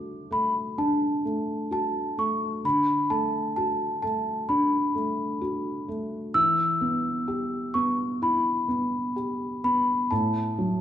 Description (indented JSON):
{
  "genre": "children's music, lullaby",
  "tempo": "64 BPM",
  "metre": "4/4",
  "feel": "rubato",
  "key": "D major",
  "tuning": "A4 = 440 Hz",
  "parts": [
    { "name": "felt-muted upright piano", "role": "accompaniment", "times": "0.0-10.8 s", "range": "A2 to G4", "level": "-28 LUFS", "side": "equal", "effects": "none" },
    { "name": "large celesta", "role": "melody", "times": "0.3-10.8 s", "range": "A5 to E6", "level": "-26 LUFS", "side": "equal", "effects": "none" }
  ],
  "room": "wet recital hall reverb, RT60 1.6 s",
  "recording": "dark, warm production",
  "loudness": "-24 LUFS",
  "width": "side -10 dB against mid",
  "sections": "0.0-10.8 A section",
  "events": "none",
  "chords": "0.0 D; 6.4 Em; 10.1 F#m/A",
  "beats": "0.77 1.71 | 2.64 3.57 4.49 5.42 | 6.35 7.28 8.21 9.16 | 10.11"
}